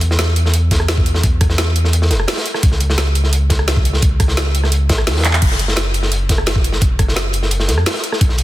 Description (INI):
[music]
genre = liquid drum and bass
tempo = 172 BPM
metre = 4/4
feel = straight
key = unclear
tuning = A4 = 440 Hz
[part]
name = sub bass with octave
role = bass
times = 0.0-8.4 s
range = E1 to F#2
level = -16 LUFS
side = equal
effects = none
[part]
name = crunchy breakbeat drum kit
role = drums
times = 0.0-8.4 s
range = hi-hat, snare drum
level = -22 LUFS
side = equal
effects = high-pass filter on hats, high-pass filter on snare, high-pass filter on room
[part]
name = drum and bass drum kit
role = drums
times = 0.0-8.4 s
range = crash cymbal, handclaps, hi-hat, rim click, snare drum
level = -20 LUFS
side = right 1 dB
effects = none
[part]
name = electronic kick drum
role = drums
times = 0.7-8.3 s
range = none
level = -15 LUFS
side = equal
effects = none
[sound]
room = little or no reverb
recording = dense, heavily limited modern master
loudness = -13 LUFS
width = side -16 dB against mid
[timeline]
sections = 0.0-8.4 A section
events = drum fill 5.2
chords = none